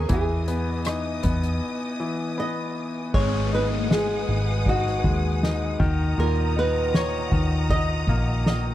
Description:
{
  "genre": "pop ballad",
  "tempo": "79 BPM",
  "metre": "4/4",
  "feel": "straight",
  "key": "G# minor",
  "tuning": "A4 = 440 Hz",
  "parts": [
    { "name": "flamenco guitar", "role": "melody", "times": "0.0-8.7 s", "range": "F#4 to D#5", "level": "-28 LUFS", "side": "right 1 dB", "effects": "tape echo" },
    { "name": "bright concert grand piano", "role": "accompaniment", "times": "0.0-8.7 s", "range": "A#2 to G#4", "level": "-29 LUFS", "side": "left 4 dB", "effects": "none" },
    { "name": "rich studio string section", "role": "sustained chords", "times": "0.0-8.7 s", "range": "B3 to D#6", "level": "-33 LUFS", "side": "equal", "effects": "none" },
    { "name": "vintage muted fingered electric bass", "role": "bass", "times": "0.0-8.7 s", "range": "G#1 to E2", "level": "-25 LUFS", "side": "equal", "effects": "none" },
    { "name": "soft-mallet drum kit", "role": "drums", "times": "0.1-8.6 s", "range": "crash cymbal, hi-hat, kick drum, ride cymbal, rim click, snare drum", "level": "-26 LUFS", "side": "equal", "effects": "none" },
    { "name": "downlifter", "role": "sound effects", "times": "3.1-8.7 s", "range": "none", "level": "-35 LUFS", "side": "left 1 dB", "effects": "none" }
  ],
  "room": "little or no reverb",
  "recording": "dry, close 1970s-style studio recording",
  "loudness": "-21 LUFS",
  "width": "side -13 dB against mid",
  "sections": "0.0-3.1 A section; 3.1-8.7 B section",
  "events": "break 1.6-3.1",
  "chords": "0.1 Emaj7; 3.1 G#m7; 5.8 D#m",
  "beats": "| 0.10 0.86 1.62 2.38 | 3.14 3.90 4.66 5.42 | 6.18 6.94 7.70 8.46"
}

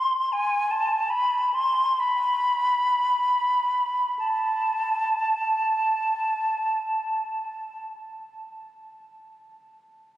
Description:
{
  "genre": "classical, free, expressive piece for unaccompanied flute",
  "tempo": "free time",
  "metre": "none",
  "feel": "none",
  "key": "A minor",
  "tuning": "A4 = 440 Hz",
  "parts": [
    { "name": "hollow concert flute", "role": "solo", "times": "0.0-7.9 s", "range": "G#5 to C6", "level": "-22 LUFS", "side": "equal", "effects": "none" }
  ],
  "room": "wet cathedral reverb, RT60 6.1 s",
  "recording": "recorded on a phone in the room, club reverb, compression",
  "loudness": "-22 LUFS",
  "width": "side -14 dB against mid",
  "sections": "0.0-4.2 A section; 4.2-10.2 B section",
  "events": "slowing down 0.0-4.2",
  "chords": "none",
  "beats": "free time"
}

